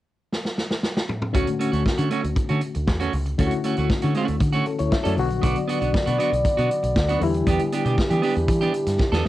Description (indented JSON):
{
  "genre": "disco",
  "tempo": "118 BPM",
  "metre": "4/4",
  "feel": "straight",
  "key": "unclear",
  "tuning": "A4 = 441 Hz",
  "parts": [
    { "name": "vintage drum kit", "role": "drums", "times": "0.3-9.3 s", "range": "hi-hat, kick drum, snare drum, toms", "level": "-24 LUFS", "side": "equal", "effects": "cassette tape" },
    { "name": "barky reed electric piano", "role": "accompaniment", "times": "1.3-9.3 s", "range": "D3 to E5", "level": "-27 LUFS", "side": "left 5 dB", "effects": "overdrive, tremolo" },
    { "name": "clean electric guitar", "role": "accompaniment", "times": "1.3-9.3 s", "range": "A3 to A4", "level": "-26 LUFS", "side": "right 5 dB", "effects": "none" },
    { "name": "fingered electric bass", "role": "bass", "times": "1.3-9.3 s", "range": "A#1 to E3", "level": "-24 LUFS", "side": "equal", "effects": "none" },
    { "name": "mellow French horn section", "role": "sustained chords", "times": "5.4-9.3 s", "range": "E3 to D5", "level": "-24 LUFS", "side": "equal", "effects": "none" }
  ],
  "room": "moderate booth ambience, RT60 0.2 s",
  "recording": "home recording on cassette",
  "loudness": "-20 LUFS",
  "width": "side -15 dB against mid",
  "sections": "0.0-1.3 A section; 1.3-9.3 B section",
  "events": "drum fill 0.3-1.3, 9.0",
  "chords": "0.0 N.C.; 1.3 Dmaj7; 5.2 Bm; 7.2 Em7"
}